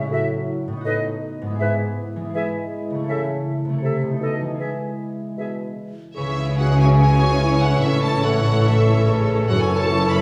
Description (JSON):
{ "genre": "classical, dramatic, fast romantic movement for symphony orchestra", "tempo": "140-164 BPM", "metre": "4/4", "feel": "rubato", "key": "E major, C# minor from 6.2 s", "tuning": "A4 = 442 Hz", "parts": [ { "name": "bright small flute group", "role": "second line", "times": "0.0-10.2 s", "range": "D#5 to C#6", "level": "-32 LUFS", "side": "equal", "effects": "none" }, { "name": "mellow clarinet", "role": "second line", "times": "0.0-10.2 s", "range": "F#4 to B4", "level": "-33 LUFS", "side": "equal", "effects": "none" }, { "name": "dark bassoon", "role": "accompaniment", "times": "0.0-10.2 s", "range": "G#2 to E3", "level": "-31 LUFS", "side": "equal", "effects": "none" }, { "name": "mellow French horn section", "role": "sustained chords", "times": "0.0-10.2 s", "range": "F#3 to A4", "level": "-30 LUFS", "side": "equal", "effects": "none" }, { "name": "concert harp", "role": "arpeggios", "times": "0.0-10.2 s", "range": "F#2 to A5", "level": "-27 LUFS", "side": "equal", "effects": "none" }, { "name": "rich symphonic violin section", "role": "melody", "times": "6.2-10.2 s", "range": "E5 to B5", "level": "-29 LUFS", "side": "equal", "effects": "none" }, { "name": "clear symphonic violin section", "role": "second line", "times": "6.2-10.2 s", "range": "G#4 to C#5", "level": "-33 LUFS", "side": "equal", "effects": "none" }, { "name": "warm studio viola section", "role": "accompaniment", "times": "6.2-10.2 s", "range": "C#4 to E4", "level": "-32 LUFS", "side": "equal", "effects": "none" }, { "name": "clear symphonic double bass section", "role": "bass", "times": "6.2-10.2 s", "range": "F#1 to C#2", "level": "-26 LUFS", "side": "equal", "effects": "none" }, { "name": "rich studio cello section", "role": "bass", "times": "6.2-10.2 s", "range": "F#2 to C#3", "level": "-23 LUFS", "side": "equal", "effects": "none" } ], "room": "wet recital hall reverb, RT60 1.5 s", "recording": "small room ambience", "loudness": "-20 LUFS", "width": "mono", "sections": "0.0-6.2 A section; 6.2-10.2 B section", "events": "none", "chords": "0.1 F#m7/A; 0.9 B7/A; 1.6 E/G#; 2.3 E; 3.1 A/C#; 3.8 Am/C; 4.2 B7; 4.6 E; 6.2 C#m; 7.8 A; 9.5 F#m7" }